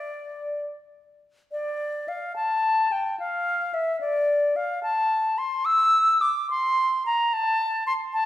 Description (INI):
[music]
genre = classical, baroque-style fantasia for unaccompanied flute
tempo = 72 BPM (dotted quarters)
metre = 6/8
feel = rubato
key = D minor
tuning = A4 = 441 Hz
[part]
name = concert flute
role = solo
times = 0.0-8.3 s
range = D5 to E6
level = -22 LUFS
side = left 1 dB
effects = none
[sound]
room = wet recital hall reverb, RT60 1.4 s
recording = heard from further back in the room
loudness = -21 LUFS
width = side -13 dB against mid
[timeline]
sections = 0.0-1.5 A section; 1.5-8.3 B section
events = none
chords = none